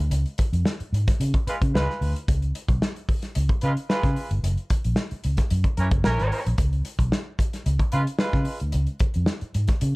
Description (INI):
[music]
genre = funk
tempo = 112 BPM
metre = 4/4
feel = straight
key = Db mixolydian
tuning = A4 = 438 Hz
[part]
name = vintage muted fingered electric bass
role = bass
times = 0.0-9.9 s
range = Gb1 to Db3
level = -23 LUFS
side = equal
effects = none
[part]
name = warm soul drum kit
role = drums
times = 0.1-9.9 s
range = hi-hat, kick drum, snare drum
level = -24 LUFS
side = equal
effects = none
[part]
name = warm horn section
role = second line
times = 1.5-8.6 s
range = Fb3 to Cb5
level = -28 LUFS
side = right 1 dB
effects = plate reverb
[sound]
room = little or no reverb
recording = dark, warm production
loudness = -21 LUFS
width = side -24 dB against mid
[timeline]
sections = 0.0-10.0 A section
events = none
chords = 0.0 Db7; 4.4 Gb7; 6.6 N.C.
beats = | 0.12 0.66 1.20 1.73 | 2.27 2.81 3.35 3.89 | 4.42 4.96 5.50 6.04 | 6.58 7.12 7.65 8.19 | 8.73 9.27 9.80